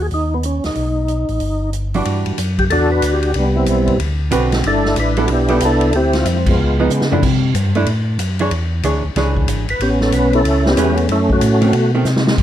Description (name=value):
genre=soul jazz organ trio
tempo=186 BPM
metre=4/4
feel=swing 63% on 8ths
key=E minor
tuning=A4 = 440 Hz
part: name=percussive tonewheel organ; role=melody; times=0.0-7.1, 9.7-11.9 s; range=G3 to B4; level=-16 LUFS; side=equal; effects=slow rotary speaker, overdrive, chorus vibrato
part: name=mellow tonewheel organ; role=bass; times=0.0-12.4 s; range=G1 to C#3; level=-18 LUFS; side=equal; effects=slow rotary speaker
part: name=swinging big-band drum kit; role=drums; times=0.1-12.4 s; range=crash cymbal, hi-hat, kick drum, ride cymbal, snare drum, toms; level=-22 LUFS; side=left 1 dB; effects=none
part: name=archtop guitar, miked and amplified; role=accompaniment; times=1.9-12.1 s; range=D3 to C#5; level=-20 LUFS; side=right 4 dB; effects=none
room=light reverb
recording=dark, warm production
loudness=-14 LUFS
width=side -11 dB against mid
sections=0.0-2.1 A section; 2.1-12.4 B section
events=band accent 6.4; drum fill 6.9-7.2, 12.1-12.4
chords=0.0 N.C.; 0.8 B7b13; 2.1 Em9; 3.4 Cmaj9; 4.0 D6; 4.6 G69; 5.9 Dm9; 6.6 C#9; 7.2 C69; 8.5 E6; 9.8 Amaj9; 11.1 F#m; 11.7 B7b9